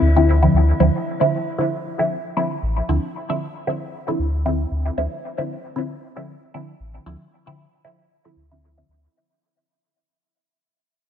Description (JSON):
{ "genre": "dub techno", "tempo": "115 BPM", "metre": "4/4", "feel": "swing 56% on 16ths", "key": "D minor", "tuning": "A4 = 440 Hz", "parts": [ { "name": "filtered dub chord stab", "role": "stabs", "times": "0.0-9.0 s", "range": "D3 to E4", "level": "-21 LUFS", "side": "equal", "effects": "phaser, vintage 12-bit sampler grit, dub echo" }, { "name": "warm sub bass", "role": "bass", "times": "0.0-9.1 s", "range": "A1 to D2", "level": "-18 LUFS", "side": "equal", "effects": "none" }, { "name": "metallic inharmonic drone", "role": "texture", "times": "0.0-0.8 s", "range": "E4", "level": "-33 LUFS", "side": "equal", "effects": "chorus, built-in reverb" } ], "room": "light reverb, digital ambience", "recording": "none", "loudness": "-19 LUFS", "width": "side -9 dB against mid", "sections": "0.8-9.2 A section", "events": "fade-out 0.8-9.2; filter sweep on synth stab 0.8-9.2", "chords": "0.0 Dm9" }